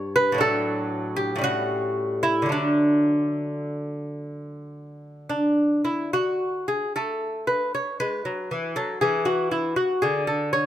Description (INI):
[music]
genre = classical, baroque-style dance for lute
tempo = 53-61 BPM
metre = 4/4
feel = rubato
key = D major, A major from 6.9 s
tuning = A4 = 440 Hz
[part]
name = lute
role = solo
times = 0.0-10.7 s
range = G2 to C#5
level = -22 LUFS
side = equal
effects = none
[sound]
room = light reverb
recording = close, detailed microphones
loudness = -22 LUFS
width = side -11 dB against mid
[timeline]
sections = 0.0-6.9 A section; 6.9-10.7 A section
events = none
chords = 0.4 D/A; 1.4 A7; 2.5 D; 6.9 A5; 9.0 Dadd9(#11)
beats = 0.42 1.45 | 2.54 3.66 4.74 5.85 | 6.94 7.98 9.01 10.03